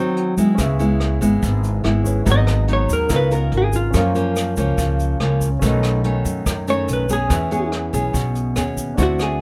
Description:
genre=bossa nova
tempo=143 BPM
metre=4/4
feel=straight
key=unclear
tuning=A4 = 438 Hz
part: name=vintage hollow-body jazz guitar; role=melody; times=0.0-9.4 s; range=Gb3 to D#5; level=-24 LUFS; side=equal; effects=none
part: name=nylon-string guitar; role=accompaniment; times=0.0-9.4 s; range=F#2 to A#4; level=-24 LUFS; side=equal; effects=none
part: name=warm grand piano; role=accompaniment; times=0.0-9.4 s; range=C4 to F#5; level=-32 LUFS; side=equal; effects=none
part: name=jazz brush drum kit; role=drums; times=0.2-9.3 s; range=hi-hat, kick drum, rim click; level=-28 LUFS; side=equal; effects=none
part: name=tube shaker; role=percussion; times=0.4-9.4 s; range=none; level=-37 LUFS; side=equal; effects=none
part: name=upright bass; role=bass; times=0.6-9.4 s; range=G#1 to F#2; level=-23 LUFS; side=equal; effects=none
room=little or no reverb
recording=none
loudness=-19 LUFS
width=mono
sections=0.6-9.4 A section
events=hollow-body jazz guitar solo 0.0-9.4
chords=0.0 Ab7; 0.6 C#m7; 2.3 G#m7; 3.1 C#13; 3.9 F#maj7; 5.6 B9; 7.3 E6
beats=0.16 | 0.58 1.00 1.42 1.84 | 2.26 2.68 3.10 3.52 | 3.94 4.36 4.78 5.20 | 5.62 6.04 6.46 6.88 | 7.30 7.72 8.14 8.56 | 8.98 9.40

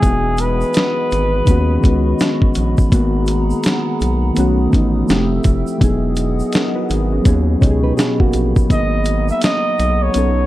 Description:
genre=lo-fi hip hop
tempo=83 BPM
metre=4/4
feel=swing 62% on 16ths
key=G# minor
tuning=A4 = 440 Hz
part: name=trumpet with bucket mute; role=melody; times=0.0-2.6, 8.7-10.5 s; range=G#4 to E5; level=-20 LUFS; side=right 1 dB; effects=low-pass filter, tape echo
part: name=soft electric-piano-like synth keys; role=accompaniment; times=0.0-10.5 s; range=B2 to D#5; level=-18 LUFS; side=left 1 dB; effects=chorus, cassette tape, low-pass filter
part: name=warbly tape-like pad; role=sustained chords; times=0.0-10.5 s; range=G#4 to E6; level=-28 LUFS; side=right 1 dB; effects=chorus, built-in reverb, low-pass filter
part: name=round analog bass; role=bass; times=0.0-10.5 s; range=E1 to D#2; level=-18 LUFS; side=equal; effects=none
part: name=dusty soul sampler-style drum kit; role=drums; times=0.0-10.4 s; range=hi-hat, kick drum, snare drum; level=-16 LUFS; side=equal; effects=none
part: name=tube shaker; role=percussion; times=0.0-10.4 s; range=none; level=-38 LUFS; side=right 4 dB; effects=none
part: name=nylon-string guitar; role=second line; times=7.6-8.7 s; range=A#3 to C#5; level=-24 LUFS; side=right 4 dB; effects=low-pass filter, tape echo
room=light reverb, small room ambience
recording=dark, warm production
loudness=-13 LUFS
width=side -15 dB against mid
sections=0.0-10.5 A section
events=none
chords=0.0 Emaj9; 1.5 B69; 2.9 G#m9; 4.4 B7; 5.1 Fmaj9; 5.8 Emaj9; 7.3 B69; 8.7 G#m9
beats=| 0.03 0.75 1.47 2.20 | 2.92 3.64 4.37 5.09 | 5.81 6.53 7.26 7.98 | 8.70 9.43 10.15

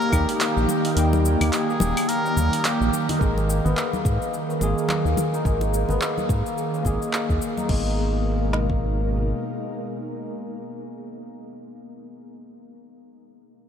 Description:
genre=organic downtempo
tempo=107 BPM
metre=4/4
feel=swing 58% on 16ths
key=G# harmonic minor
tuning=A4 = 440 Hz
part: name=trumpet with cup mute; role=melody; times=0.0-3.1 s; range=G4 to A#4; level=-30 LUFS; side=equal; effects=vintage 12-bit sampler grit, analog delay
part: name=barky tine electric piano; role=accompaniment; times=0.0-12.5 s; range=A#3 to G5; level=-29 LUFS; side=left 1 dB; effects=fast stereo tremolo, sidechain pumping, low-pass filter, tape echo
part: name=ethereal airy pad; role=sustained chords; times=0.0-10.7 s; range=B2 to A#5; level=-29 LUFS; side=right 2 dB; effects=ensemble chorus, built-in reverb, sidechain pumping
part: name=santur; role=arpeggios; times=0.0-12.3 s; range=G3 to D#4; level=-31 LUFS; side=left 3 dB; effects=low-pass filter, tape echo
part: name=deep house drum kit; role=drums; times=0.0-7.8 s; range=cabasa, claves, crash cymbal, handclaps, hi-hat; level=-30 LUFS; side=equal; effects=overdrive, small room ambience
part: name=round analog bass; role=bass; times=0.1-9.3 s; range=D#1 to G#2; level=-23 LUFS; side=equal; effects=sidechain pumping
part: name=organic electronic drum kit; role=drums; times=0.1-8.8 s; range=kick drum, snare drum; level=-25 LUFS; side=equal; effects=small room ambience
part: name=congas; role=percussion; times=0.1-7.7 s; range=none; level=-31 LUFS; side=left 2 dB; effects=none
room=wet huge ambient reverb, RT60 7.7 s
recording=dreamy mix soaked in reverb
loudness=-20 LUFS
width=side -8 dB against mid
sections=0.0-3.2 A section; 3.2-7.7 B section; 7.7-9.9 C section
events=kick drops out 1.0-3.2; filter sweep on tine electric piano 3.2-7.7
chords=0.0 D#; 3.2 G#sus2; 7.7 G#madd9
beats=0.40 | 0.96 1.52 2.08 2.65 | 3.21 3.77 4.33 4.89 | 5.45 6.01 6.57 7.13 | 7.69 8.25 8.81 9.38

